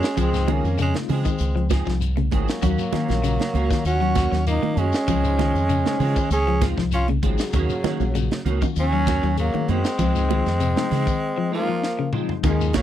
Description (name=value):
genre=afrobeat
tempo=98 BPM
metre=4/4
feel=straight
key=unclear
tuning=A4 = 440 Hz
part: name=warm trombone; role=melody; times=0.0-12.8 s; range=Gb3 to Ab4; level=-26 LUFS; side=right 1 dB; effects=none
part: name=growling tenor saxophone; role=second line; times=0.0-12.8 s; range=Db3 to Db4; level=-30 LUFS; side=right 2 dB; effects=none
part: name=semi-hollow electric guitar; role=stabs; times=0.0-12.8 s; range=Eb3 to Ab4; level=-30 LUFS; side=right 6 dB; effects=ensemble chorus
part: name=tight funk drum kit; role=drums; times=0.0-12.8 s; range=hi-hat, kick drum, snare drum, toms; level=-26 LUFS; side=equal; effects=none
part: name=shekere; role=percussion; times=0.0-12.7 s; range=none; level=-35 LUFS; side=left 6 dB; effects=none
part: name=electric guitar at the edge of break-up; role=arpeggios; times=0.2-12.7 s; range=C3 to Gb3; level=-27 LUFS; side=left 7 dB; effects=none
part: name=deep dub fingered electric bass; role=bass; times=0.2-12.8 s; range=Ab1 to Db3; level=-23 LUFS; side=equal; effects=none
part: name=congas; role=percussion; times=0.2-12.8 s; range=none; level=-28 LUFS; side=right 13 dB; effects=none
part: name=reed electric piano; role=accompaniment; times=0.3-12.8 s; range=F3 to C5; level=-31 LUFS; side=left 16 dB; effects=medium tremolo
room=little or no reverb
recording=dry, close 1970s-style studio recording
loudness=-19 LUFS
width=side -11 dB against mid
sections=0.0-12.4 A section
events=break 11.2-12.4; drum fill 11.8-12.4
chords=0.2 Dbmaj7; 2.6 Ebm7; 5.1 Dbmaj7; 7.5 Ebm7; 10.0 Dbmaj7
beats=| 0.17 0.79 1.40 2.01 | 2.63 3.24 3.85 4.47 | 5.08 5.69 6.31 6.92 | 7.53 8.15 8.76 9.37 | 9.99 10.60 11.21 11.83 | 12.44